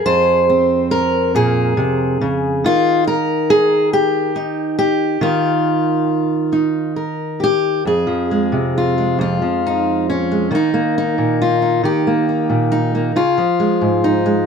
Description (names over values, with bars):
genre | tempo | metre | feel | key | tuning
folk, solo fingerstyle acoustic guitar | 46 BPM (dotted quarters) | 6/8 | straight | F minor | A4 = 441 Hz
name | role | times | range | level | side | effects
fingerpicked steel-string acoustic guitar | solo | 0.0-14.5 s | F2 to C5 | -14 LUFS | equal | none
room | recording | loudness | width
light reverb | close, detailed microphones | -14 LUFS | side -6 dB against mid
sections
0.0-7.8 A section; 7.8-14.5 B section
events
none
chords
0.0 Fm; 2.6 Ebadd9; 7.8 Fm; 10.5 Eb; 13.2 Db